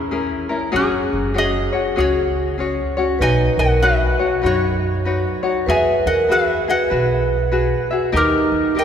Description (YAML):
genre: Hawaiian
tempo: 97 BPM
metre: 4/4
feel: swing 62% on 8ths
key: unclear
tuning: A4 = 440 Hz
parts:
  - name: metal-body resonator slide guitar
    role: melody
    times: 0.0-8.8 s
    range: C#4 to G#5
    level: -22 LUFS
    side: left 1 dB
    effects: none
  - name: vibraphone with medium mallets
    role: second line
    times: 0.0-8.8 s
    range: C#4 to B4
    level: -22 LUFS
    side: right 3 dB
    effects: none
  - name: tenor ukulele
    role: accompaniment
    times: 0.0-8.8 s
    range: C#4 to E5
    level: -21 LUFS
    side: left 4 dB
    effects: none
  - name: upright bass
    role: bass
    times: 0.0-8.8 s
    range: F#1 to F#2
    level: -22 LUFS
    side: equal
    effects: none
room: wet cathedral reverb, RT60 4.2 s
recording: recorded in a church or concert hall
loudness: -16 LUFS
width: side -8 dB against mid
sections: 0.0-8.8 A section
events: none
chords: 0.0 A#m7b5; 0.7 F#sus2; 3.2 Badd9; 5.7 Eadd9; 8.1 D#